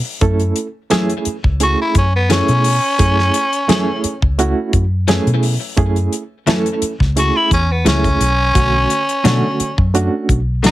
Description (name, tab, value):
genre	straight-eighth soul blues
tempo	86 BPM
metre	4/4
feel	swing 53% on 16ths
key	F# minor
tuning	A4 = 440 Hz
part	barky reed electric piano	accompaniment	0.2-10.7 s	D3 to A4	-19 LUFS	right 4 dB	overdrive, tremolo
part	vintage muted fingered electric bass	bass	0.2-10.7 s	B1 to F#3	-16 LUFS	equal	none
part	damped 70s drum kit	drums	0.2-10.7 s	hi-hat, kick drum, snare drum	-19 LUFS	left 1 dB	none
part	direct-recorded clean electric guitar	stabs	0.9-10.7 s	F#2 to D4	-22 LUFS	left 5 dB	digital delay
part	growling tenor saxophone	melody	1.6-10.7 s	B3 to F#4	-16 LUFS	equal	none
room	light reverb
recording	none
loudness	-13 LUFS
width	side -15 dB against mid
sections	0.0-10.7 A section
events	tenor saxophone solo 0.0-10.7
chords	0.0 F#m7; 8.6 Bm7